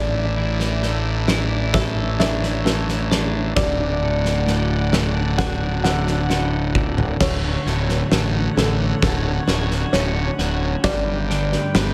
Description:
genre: post-rock.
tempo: 66 BPM.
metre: 4/4.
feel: straight.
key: D major.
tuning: A4 = 440 Hz.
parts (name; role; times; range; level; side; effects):
dark studio string section; sustained chords; 0.0-11.9 s; D3 to G5; -32 LUFS; equal; none.
felt-muted upright piano; arpeggios; 0.0-11.7 s; A4 to F#5; -30 LUFS; equal; analog delay.
twelve-string electric guitar; arpeggios; 0.0-11.9 s; D2 to A4; -28 LUFS; equal; spring reverb, analog delay.
fuzz fingered electric bass; bass; 0.0-11.9 s; D1 to A1; -25 LUFS; equal; overdrive.
big rock drum kit; drums; 0.6-11.9 s; crash cymbal, kick drum, snare drum, toms; -25 LUFS; equal; none.
room: light reverb.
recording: none.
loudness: -20 LUFS.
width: mono.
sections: 0.0-7.2 A section; 7.2-11.9 B section.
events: drum fill 6.3-7.2.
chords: 0.0 Asus4; 3.6 D; 7.2 Dmaj7; 10.8 Gadd9.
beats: 0.82 1.74 2.65 | 3.56 4.47 5.38 6.29 | 7.20 8.11 9.02 9.93 | 10.84 11.75.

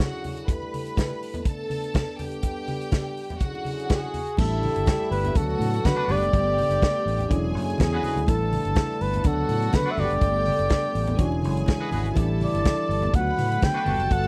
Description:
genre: disco.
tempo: 123 BPM.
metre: 4/4.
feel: straight.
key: D major.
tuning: A4 = 440 Hz.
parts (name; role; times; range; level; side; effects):
clear studio string section; second line; 0.0-14.3 s; E4 to B5; -38 LUFS; equal; none.
mellow French horn section; sustained chords; 0.0-14.3 s; D3 to C#5; -35 LUFS; equal; none.
vintage drum kit; drums; 0.0-14.2 s; crash cymbal, hi-hat, kick drum, snare drum; -25 LUFS; equal; none.
congas; percussion; 0.0-14.3 s; none; -36 LUFS; equal; none.
warm flugelhorn; melody; 3.9-14.3 s; G#4 to G5; -28 LUFS; equal; none.
tine electric piano; accompaniment; 4.4-14.3 s; D3 to A4; -33 LUFS; equal; analog chorus.
fingered electric bass; bass; 4.4-14.3 s; E1 to D3; -29 LUFS; equal; none.
clear horn section; stabs; 6.0-14.0 s; D4 to B4; -35 LUFS; equal; none.
room: little or no reverb.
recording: dry, close 1970s-style studio recording.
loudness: -24 LUFS.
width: mono.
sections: 0.0-4.4 A section; 4.4-14.3 B section.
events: none.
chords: 0.5 A7sus4; 1.5 D5; 2.2 Gadd9; 3.4 E13; 4.4 A7sus4; 5.4 D6; 6.1 Gmaj9; 7.3 E13; 8.3 A7sus4; 9.3 D6; 10.0 Gmaj9; 11.2 E13; 12.2 A7sus4; 13.1 D6.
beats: | 0.48 0.97 1.46 1.95 | 2.43 2.92 3.41 3.90 | 4.39 4.87 5.36 5.85 | 6.33 6.82 7.31 7.79 | 8.28 8.77 9.25 9.74 | 10.22 10.71 11.20 11.68 | 12.17 12.65 13.14 13.62 | 14.11.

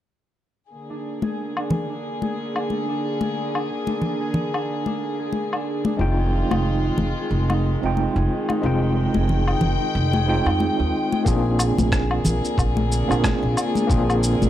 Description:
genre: sunset chillout.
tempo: 91 BPM.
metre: 4/4.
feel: swing 57% on 16ths.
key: unclear.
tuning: A4 = 440 Hz.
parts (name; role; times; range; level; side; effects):
warm chamber string section; sustained chords; 0.7-14.5 s; D3 to G5; -27 LUFS; left 2 dB; vintage 12-bit sampler grit.
concert harp; arpeggios; 0.9-13.5 s; D4 to Ab4; -31 LUFS; right 5 dB; low-pass filter, analog delay.
congas; percussion; 1.2-14.5 s; none; -26 LUFS; left 3 dB; none.
electronic woodblock, shaker and rim click; drums; 1.6-14.5 s; none; -27 LUFS; left 2 dB; none.
overdriven tine electric piano; accompaniment; 6.0-14.5 s; Ab3 to G5; -24 LUFS; moving between left 4 dB and right 5 dB; fast tremolo, auto-pan, analog delay.
upright bass; bass; 6.0-14.5 s; F1 to F2; -22 LUFS; equal; none.
electronic kick drum; drums; 11.3-14.1 s; none; -22 LUFS; equal; none.
room: small room ambience.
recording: dry, gritty hardware recording.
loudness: -20 LUFS.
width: side -12 dB against mid.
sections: 0.7-11.3 A section; 11.3-14.5 B section.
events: none.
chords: 0.7 Bb7; 6.0 Fm7; 11.3 Bb7.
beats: | 0.72 1.38 2.03 2.69 | 3.35 4.01 4.67 5.33 | 5.99 6.65 7.31 7.97 | 8.63 9.29 9.95 10.61 | 11.27 11.92 12.58 13.24 | 13.90.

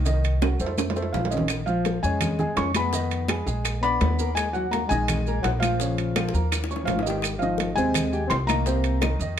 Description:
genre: Afro-Cuban jazz.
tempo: 167 BPM.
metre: 4/4.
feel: straight.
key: Bb minor.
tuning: A4 = 440 Hz.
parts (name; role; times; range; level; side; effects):
warm trombone; second line; 0.0-9.1 s; Eb3 to Db4; -30 LUFS; left 6 dB; none.
clear upright piano; accompaniment; 0.0-9.4 s; C3 to D6; -30 LUFS; right 3 dB; none.
upright bass; bass; 0.0-9.4 s; Ab1 to F2; -26 LUFS; equal; none.
felt-muted upright piano; melody; 0.1-9.2 s; Eb5 to Db6; -28 LUFS; equal; none.
bongos; percussion; 0.1-9.2 s; none; -35 LUFS; left 6 dB; none.
congas; percussion; 0.1-9.4 s; none; -31 LUFS; left 1 dB; none.
maracas; percussion; 0.1-9.4 s; none; -37 LUFS; right 8 dB; none.
timbales; percussion; 0.2-9.2 s; none; -31 LUFS; right 8 dB; none.
claves; percussion; 0.4-9.2 s; none; -36 LUFS; left 4 dB; none.
room: moderate studio reverb, RT60 0.8 s.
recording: none.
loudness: -22 LUFS.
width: side -9 dB against mid.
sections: 0.0-1.5 A section; 1.5-9.4 B section.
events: drum fill 0.4-1.5, 6.2-7.2.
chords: 0.1 Cm7b5; 0.8 F; 1.5 Bbm7; 2.9 Fm7b5; 3.7 Bb7b9; 4.4 Ebm; 5.8 Bbm; 6.5 Eb7; 7.2 Ab6; 8.7 Cm7.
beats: | 0.07 0.43 0.78 1.14 | 1.50 1.86 2.22 2.58 | 2.94 3.29 3.65 4.01 | 4.37 4.73 5.09 5.44 | 5.80 6.16 6.52 6.88 | 7.24 7.59 7.95 8.31 | 8.66 9.02 9.38.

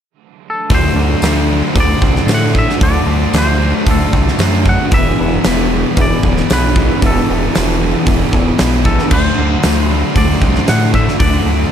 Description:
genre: rock, shoegaze and dream pop.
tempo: 114 BPM.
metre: 4/4.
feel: straight.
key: D mixolydian.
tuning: A4 = 441 Hz.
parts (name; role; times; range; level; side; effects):
twangy electric guitar; melody; 0.5-11.7 s; A4 to F#5; -21 LUFS; left 1 dB; digital delay.
raw garage guitar; riff; 0.7-11.7 s; D3 to C5; -20 LUFS; right 13 dB; overdrive, reverse reverb.
raw garage guitar; riff; 0.7-11.7 s; E2 to D4; -21 LUFS; left 1 dB; overdrive.
thick fuzz guitar; riff; 0.7-11.7 s; E2 to D4; -20 LUFS; left 11 dB; distortion, wide subtle chorus.
gritty driven synth bass; bass; 0.7-11.7 s; D1 to A2; -16 LUFS; equal; none.
huge arena drum kit; drums; 0.7-11.3 s; crash cymbal, hi-hat, kick drum, snare drum; -16 LUFS; equal; none.
tambourine; percussion; 1.2-10.8 s; none; -30 LUFS; left 11 dB; none.
room: little or no reverb.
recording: none.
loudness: -11 LUFS.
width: side -9 dB against mid.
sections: 0.7-11.7 A section.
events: none.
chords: 0.0 N.C.; 0.7 D7; 4.9 E7sus4; 9.1 D7.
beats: 0.19 | 0.71 1.24 1.77 2.29 | 2.82 3.35 3.87 4.40 | 4.92 5.45 5.97 6.50 | 7.02 7.55 8.07 8.59 | 9.12 9.64 10.16 10.69 | 11.21.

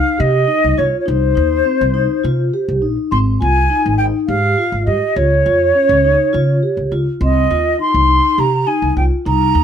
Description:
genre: progressive instrumental, band music in an uneven meter.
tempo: 205 BPM (eighths).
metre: 7/8.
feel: straight.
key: C phrygian.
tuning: A4 = 440 Hz.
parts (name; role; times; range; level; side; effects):
mellow concert flute; melody; 0.0-9.6 s; C5 to C6; -15 LUFS; right 1 dB; none.
vibraphone with soft mallets; arpeggios; 0.0-9.6 s; C4 to G4; -19 LUFS; left 2 dB; none.
upright bass; bass; 0.2-9.6 s; Ab1 to Db3; -17 LUFS; equal; none.
room: light reverb.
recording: none.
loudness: -13 LUFS.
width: side -8 dB against mid.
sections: 0.0-9.6 A section.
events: none.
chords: 0.0 Cm; 3.1 Ab6; 5.2 Db; 7.2 Cm7.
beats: 0.19 0.49 0.78 | 1.07 1.36 1.66 1.95 2.24 2.54 2.83 | 3.12 3.41 3.71 4.00 4.29 4.58 4.88 | 5.17 5.46 5.75 6.04 6.34 6.63 6.92 | 7.21 7.51 7.80 8.09 8.38 8.68 8.97 | 9.26 9.55.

